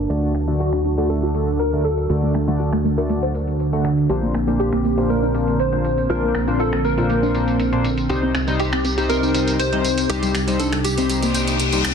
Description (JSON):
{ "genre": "progressive house", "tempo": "120 BPM", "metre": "4/4", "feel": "straight", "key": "unclear", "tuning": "A4 = 440 Hz", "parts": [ { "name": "warm analog pad", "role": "sustained chords", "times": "0.0-11.9 s", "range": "C3 to A5", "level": "-24 LUFS", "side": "right 1 dB", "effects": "chorus" }, { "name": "fat analog bass", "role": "bass", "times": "0.0-11.9 s", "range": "Bb1 to D2", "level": "-24 LUFS", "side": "equal", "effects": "tube saturation" }, { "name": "soft round pluck", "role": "arpeggios", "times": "0.1-11.9 s", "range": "G3 to C5", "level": "-25 LUFS", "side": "equal", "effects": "wide subtle chorus, cassette tape, digital delay" }, { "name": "chorused polysynth", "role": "stabs", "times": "0.1-11.9 s", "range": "Bb2 to F#5", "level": "-25 LUFS", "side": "left 2 dB", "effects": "cassette tape, digital delay" }, { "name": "pop drum kit", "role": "drums", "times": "0.1-11.9 s", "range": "finger snaps, hi-hat, tambourine", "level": "-28 LUFS", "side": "right 1 dB", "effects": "studio reverb, soft clipping on snare" }, { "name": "plucky unison lead", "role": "melody", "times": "0.6-11.8 s", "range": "F#4 to C5", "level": "-25 LUFS", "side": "equal", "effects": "wide subtle chorus, digital delay" }, { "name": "reverse cymbal", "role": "sound effects", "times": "11.2-11.9 s", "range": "none", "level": "-23 LUFS", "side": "left 4 dB", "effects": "none" } ], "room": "light reverb", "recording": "dense, heavily limited modern master, low-pass filter", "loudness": "-17 LUFS", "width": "side -6 dB against mid", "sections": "0.0-11.9 A section", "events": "filter sweep on synth pluck 0.0-11.9; filter sweep 0.0-11.9; reverse cymbal 11.2-11.9", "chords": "0.1 D; 4.1 Bbadd9; 8.1 Cm" }